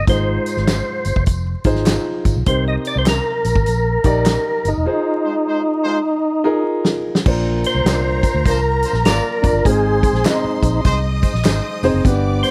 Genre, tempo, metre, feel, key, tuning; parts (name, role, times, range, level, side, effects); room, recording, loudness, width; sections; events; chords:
uptempo 1960s-style soul; 100 BPM; 4/4; swing 63% on 8ths; A4 = 440 Hz
percussive tonewheel organ; melody; 0.0-12.5 s; Eb4 to Eb5; -22 LUFS; equal; overdrive, chorus vibrato, stopped rotary speaker
vintage muted fingered electric bass; bass; 0.0-12.4 s; Fb1 to D2; -22 LUFS; equal
clear baby grand piano; accompaniment; 0.1-12.5 s; G2 to Eb5; -24 LUFS; equal
natural country drum kit; drums; 0.1-12.5 s; crash cymbal, hi-hat, kick drum, snare drum; -21 LUFS; equal
tambourine and handclaps; percussion; 0.1-12.5 s; -35 LUFS; equal
clear horn section; second line; 5.2-11.9 s; F3 to D5; -28 LUFS; equal
clear studio string section; second line; 7.3-12.5 s; Bb4 to Eb6; -30 LUFS; equal
light reverb, studio ambience; vinyl crackle; -17 LUFS; mono
0.0-7.3 A section; 7.3-12.5 B section
band accent 4.9-7.3; drum fill 6.1-7.3
0.1 Ab6; 2.5 Cm7; 4.9 Fm7; 7.3 Bbadd9; 9.7 Ab